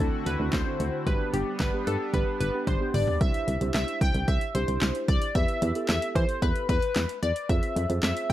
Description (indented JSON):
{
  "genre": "synth-pop",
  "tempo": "112 BPM",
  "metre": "4/4",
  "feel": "straight",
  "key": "C major",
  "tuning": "A4 = 441 Hz",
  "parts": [
    { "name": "funky polysynth comp", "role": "melody", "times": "0.0-8.3 s", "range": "G4 to G5", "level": "-30 LUFS", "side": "left 2 dB", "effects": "chorus, tape echo" },
    { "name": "muted felt-like synth keys", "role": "accompaniment", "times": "0.0-8.3 s", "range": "B3 to C5", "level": "-34 LUFS", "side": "right 2 dB", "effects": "chorus" },
    { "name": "chorused pulse-width pad", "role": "sustained chords", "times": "0.0-3.2 s", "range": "D3 to F#4", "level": "-35 LUFS", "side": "equal", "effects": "none" },
    { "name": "solid FM bass", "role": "bass", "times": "0.0-8.3 s", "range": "G1 to E3", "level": "-28 LUFS", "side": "equal", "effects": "tube saturation" },
    { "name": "punchy analog drum machine", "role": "drums", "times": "0.0-8.3 s", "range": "handclaps, hi-hat, kick drum, snare drum, toms", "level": "-28 LUFS", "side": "equal", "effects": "overdrive" }
  ],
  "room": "digital ambience",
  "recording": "dry, gritty hardware recording",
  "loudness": "-24 LUFS",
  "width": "side -13 dB against mid",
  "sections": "0.0-3.2 A section; 3.2-8.3 B section",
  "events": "drum fill 2.7-3.2",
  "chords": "0.0 D7; 1.1 G; 3.2 Cadd9; 5.4 Em; 7.5 Fm"
}